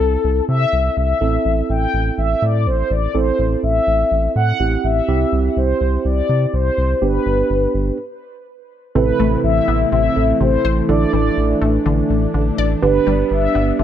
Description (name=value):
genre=pop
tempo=124 BPM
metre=4/4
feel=straight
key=A minor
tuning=A4 = 440 Hz
part: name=mellow synth brass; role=melody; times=0.0-13.8 s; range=A4 to G5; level=-20 LUFS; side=left 2 dB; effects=chorus, plate reverb, ping-pong delay
part: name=mellow tine electric piano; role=accompaniment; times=0.0-13.8 s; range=B3 to B4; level=-22 LUFS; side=right 8 dB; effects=plate reverb
part: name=round analog bass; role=bass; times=0.0-13.8 s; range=G1 to C3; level=-19 LUFS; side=equal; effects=none
part: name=brassy analog pad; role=sustained chords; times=9.0-13.8 s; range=C3 to E4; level=-22 LUFS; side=left 2 dB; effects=chorus
part: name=resonant blip pluck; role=arpeggios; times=9.0-13.8 s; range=C3 to D5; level=-24 LUFS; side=left 4 dB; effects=chorus, ping-pong delay
room=moderate studio reverb, RT60 0.6 s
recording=none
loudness=-15 LUFS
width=side -10 dB against mid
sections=0.0-9.0 A section; 9.0-13.8 B section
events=stop 8.0-9.0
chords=0.0 C; 1.2 Am7; 5.1 C; 7.0 G; 9.0 Amadd9; 10.9 Dsus2/A; 12.8 G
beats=0.24 0.73 | 1.21 1.70 2.18 2.66 | 3.15 3.63 4.12 4.60 | 5.08 5.57 6.05 6.54 | 7.02 7.50 7.99 8.47 | 8.95 9.44 9.92 10.41 | 10.89 11.37 11.86 12.34 | 12.82 13.31 13.79